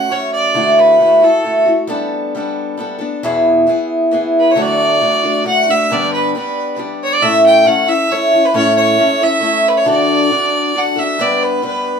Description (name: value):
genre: rock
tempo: 135 BPM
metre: 3/4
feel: straight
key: unclear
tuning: A4 = 440 Hz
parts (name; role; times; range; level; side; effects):
- clear fiddle; melody; 0.0-1.7, 4.4-12.0 s; A4 to G5; -15 LUFS; right 1 dB; none
- picked old ladder-braced acoustic guitar; accompaniment; 0.0-12.0 s; E2 to B4; -13 LUFS; equal; none
room: moderate small room ambience, RT60 0.5 s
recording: band playing live in one room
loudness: -11 LUFS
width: side -6 dB against mid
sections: 0.0-4.6 A section; 4.6-12.0 B section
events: none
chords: 0.0 F#m; 0.5 Dadd9; 1.9 Gadd9; 3.2 E; 4.6 D; 5.9 G; 7.2 A; 9.9 D; 11.2 G